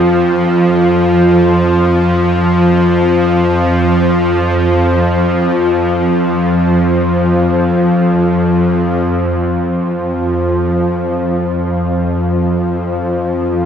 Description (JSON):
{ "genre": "ambient", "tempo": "free time", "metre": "none", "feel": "none", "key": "unclear", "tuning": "A4 = 441 Hz", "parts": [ { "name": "bowed-like drone", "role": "solo", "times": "0.0-13.7 s", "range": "F2 to F3", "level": "-11 LUFS", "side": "equal", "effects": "built-in reverb, diffuse ambient delay" } ], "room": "wet huge ambient reverb, RT60 7.5 s", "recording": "dark, warm production", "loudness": "-11 LUFS", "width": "side -8 dB against mid", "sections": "0.0-9.1 A section; 9.1-13.7 B section", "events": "none", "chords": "none" }